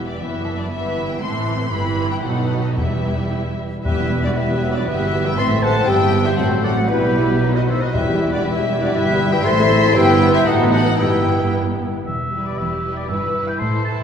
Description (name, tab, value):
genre	quick classical-period movement for symphony orchestra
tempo	117 BPM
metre	2/4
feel	rubato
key	E minor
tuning	A4 = 438 Hz
part	rich studio violin section	melody	0.0-14.0 s	B4 to C6	-26 LUFS	left 3 dB	none
part	dark studio violin section	second line	0.0-14.0 s	E4 to E5	-26 LUFS	left 3 dB	none
part	warm studio viola section	accompaniment	0.0-14.0 s	D#3 to A4	-24 LUFS	right 2 dB	none
part	warm studio cello section	bass	0.0-14.0 s	E2 to B2	-26 LUFS	right 2 dB	none
part	warm symphonic double bass section	bass	0.0-14.0 s	E1 to B1	-24 LUFS	right 2 dB	none
part	timpani	percussion	2.8-4.6, 7.9-8.7 s	E2	-26 LUFS	left 1 dB	none
part	dark bassoon	accompaniment	3.8-11.8 s	E3 to B3	-26 LUFS	right 1 dB	none
part	mellow French horn section	sustained chords	3.8-11.5 s	B3 to C5	-24 LUFS	left 4 dB	none
part	bright clarinet	second line	3.9-11.8 s	B3 to E4	-26 LUFS	equal	none
part	clear oboe	second line	3.9-14.0 s	G4 to C6	-26 LUFS	left 1 dB	none
part	concert flute	second line	3.9-11.5 s	B4 to C6	-25 LUFS	equal	none
room	wet concert hall reverb, RT60 2.5 s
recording	heard from further back in the room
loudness	-16 LUFS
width	side -7 dB against mid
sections	0.0-3.9 A section; 3.9-12.1 B section; 12.1-14.0 B section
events	none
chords	0.0 Em; 0.7 Em/G; 1.2 Am; 1.7 Em/G; 2.2 B7; 2.8 Em; 4.9 Em/G; 5.4 Am; 5.9 Em/G; 6.4 F#dim/A; 6.9 Em/B; 7.4 B; 7.9 Em; 9.0 Em/G; 9.5 Am; 10.0 Em/G; 10.5 B7/A; 11.0 Em/G; 12.1 Em; 13.1 Em/G